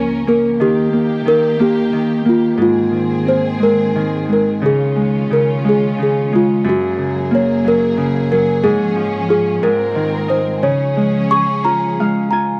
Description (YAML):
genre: children's music, lullaby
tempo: 60 BPM (dotted quarters)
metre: 6/8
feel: rubato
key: Db major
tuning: A4 = 441 Hz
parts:
  - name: small celesta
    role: melody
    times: 0.0-12.6 s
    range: F4 to Db6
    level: -19 LUFS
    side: equal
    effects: none
  - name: Celtic harp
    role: accompaniment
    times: 0.0-12.6 s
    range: Gb2 to Ab5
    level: -19 LUFS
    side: equal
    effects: none
  - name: warm studio string section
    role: sustained chords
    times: 0.0-12.6 s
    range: Db2 to Bb4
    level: -27 LUFS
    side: equal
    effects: none
room: little or no reverb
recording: dry, close 1970s-style studio recording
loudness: -16 LUFS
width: mono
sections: 0.0-12.6 A section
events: harp fill 11.6-12.6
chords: 0.0 Bbm/Db; 0.6 Eb; 2.6 Ab; 4.6 Dbadd9; 6.7 Gbadd9; 8.6 Db/Ab; 9.6 Abadd9; 10.6 Db